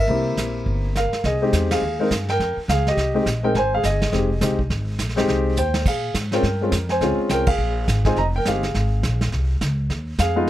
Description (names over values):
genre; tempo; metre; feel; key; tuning
jazz piano trio; 208 BPM; 4/4; swing 60% on 8ths; F minor; A4 = 440 Hz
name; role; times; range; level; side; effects
warm baby grand piano; melody; 0.0-10.5 s; Ab3 to Bb5; -21 LUFS; left 1 dB; none
upright bass; bass; 0.0-10.5 s; F1 to Bb2; -23 LUFS; equal; none
vintage brush drum kit; drums; 0.1-10.5 s; brushed snare drum, crash cymbal, hi-hat, kick drum, ride cymbal, snare drum; -26 LUFS; right 2 dB; none
room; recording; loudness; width
little or no reverb; none; -19 LUFS; side -13 dB against mid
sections
0.0-1.2 A section; 1.2-10.5 A section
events
band accent 1.7, 7.4; drum fill 5.6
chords
0.1 C7; 1.2 Fm7; 5.9 Bbm7; 8.2 Fm7